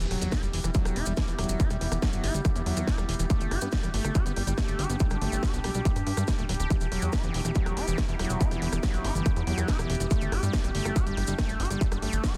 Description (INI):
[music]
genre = psychedelic trance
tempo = 141 BPM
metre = 4/4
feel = straight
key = E minor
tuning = A4 = 440 Hz
[part]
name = overtone-sweeping drone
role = sustained chords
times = 0.5-12.4 s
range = G3 to G4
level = -41 LUFS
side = equal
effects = chorus, built-in reverb, sidechain pumping
[part]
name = overdriven acid bass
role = riff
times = 0.0-12.4 s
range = E3 to G4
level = -36 LUFS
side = equal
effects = distortion, sidechain pumping, delay
[part]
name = plucky analog bass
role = bass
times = 0.0-12.4 s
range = D1 to G2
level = -32 LUFS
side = equal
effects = none
[part]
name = techno drum kit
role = drums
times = 0.0-12.4 s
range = hi-hat, rim click, snare drum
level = -38 LUFS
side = equal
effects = soft clipping on snare
[part]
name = maracas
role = percussion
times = 0.0-12.4 s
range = none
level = -43 LUFS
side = equal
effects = none
[part]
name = impact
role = sound effects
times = 0.0-1.6 s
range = none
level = -43 LUFS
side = equal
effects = none
[part]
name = warbly tape-like pad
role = texture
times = 0.0-12.4 s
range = B3 to G5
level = -41 LUFS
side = equal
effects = chorus, built-in reverb, sidechain pumping
[part]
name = electronic kick drum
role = drums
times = 0.3-12.3 s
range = none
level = -30 LUFS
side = equal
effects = distortion
[sound]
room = little or no reverb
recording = dense, heavily limited modern master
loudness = -28 LUFS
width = mono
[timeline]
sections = 0.0-12.4 A section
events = impact 0.0-1.6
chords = 0.0 E5; 3.3 G5; 6.7 E5; 10.1 G5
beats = 0.32 0.75 1.17 | 1.60 2.02 2.45 2.88 | 3.30 3.73 4.15 4.58 | 5.00 5.43 5.85 6.28 | 6.71 7.13 7.56 7.98 | 8.41 8.83 9.26 9.68 | 10.11 10.53 10.96 11.38 | 11.81 12.24